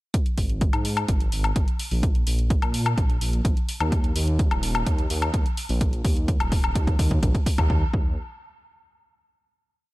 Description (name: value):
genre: progressive house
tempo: 127 BPM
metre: 4/4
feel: straight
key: unclear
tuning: A4 = 440 Hz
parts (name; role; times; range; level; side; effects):
- electronic hi-hat and woodblock; drums; 0.1-7.7 s; none; -30 LUFS; left 2 dB; overdrive, sidechain pumping on hats, sidechain pumping on perc
- electronic kick drum; drums; 0.1-8.0 s; none; -22 LUFS; equal; overdrive
- dark detuned saw bass; bass; 0.4-8.2 s; Eb1 to Bb2; -25 LUFS; equal; sidechain pumping
room: little or no reverb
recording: dark, warm production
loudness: -21 LUFS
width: side -19 dB against mid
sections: 0.1-7.7 build; 7.7-9.6 final note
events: build-up 0.1-7.7; drum fill 3.9-7.7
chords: none